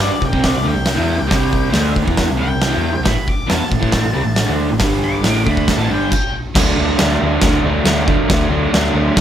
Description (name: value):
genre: garage rock duo or trio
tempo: 137 BPM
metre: 4/4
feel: straight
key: unclear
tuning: A4 = 442 Hz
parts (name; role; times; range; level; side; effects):
- octave-fuzz lead guitar; melody; 0.0-6.3 s; D5 to D6; -24 LUFS; left 2 dB; distortion
- crunchy overdriven guitar; riff; 0.0-9.2 s; G2 to E4; -18 LUFS; right 1 dB; none
- hollow-body short-scale picked electric bass; bass; 0.0-9.2 s; G1 to E2; -21 LUFS; equal; none
- oversized low-tuned drum kit; drums; 0.2-9.2 s; crash cymbal, hi-hat, kick drum, snare drum; -17 LUFS; equal; none
room: light reverb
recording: none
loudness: -14 LUFS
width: side -10 dB against mid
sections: 0.0-6.5 A section; 6.5-9.2 B section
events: stop 6.1-6.5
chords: 0.0 C5; 3.1 A5; 4.8 G5; 5.2 A5; 6.1 N.C.; 6.5 D